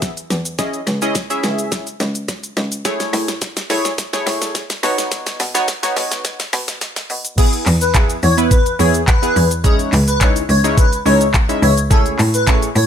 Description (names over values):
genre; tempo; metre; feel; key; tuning
dance-pop; 106 BPM; 4/4; straight; E major; A4 = 440 Hz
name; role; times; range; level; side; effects
funky polysynth comp; accompaniment; 0.0-12.7 s; G#3 to E5; -20 LUFS; equal; chorus, sidechain pumping
rich cello; bass; 0.0-12.9 s; C#2 to B2; -19 LUFS; equal; sidechain pumping
pop drum kit; drums; 0.0-12.9 s; crash cymbal, handclaps, hi-hat, kick drum, shaker, snare drum; -18 LUFS; equal; none
airy dreamy lead; melody; 7.4-12.9 s; G#4 to C#5; -19 LUFS; left 1 dB; chorus, ping-pong delay
room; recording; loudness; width
little or no reverb; high-pass filter; -14 LUFS; side -9 dB against mid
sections
0.0-7.4 A section; 7.4-12.9 B section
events
build-up 0.0-7.4; drum fill 0.0-7.4; filter sweep 0.0-7.4; drop 7.4-12.9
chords
0.0 E; 0.6 C#madd9; 2.9 Amaj7; 4.8 Badd9; 7.4 E; 9.6 C#madd9; 11.9 Amaj7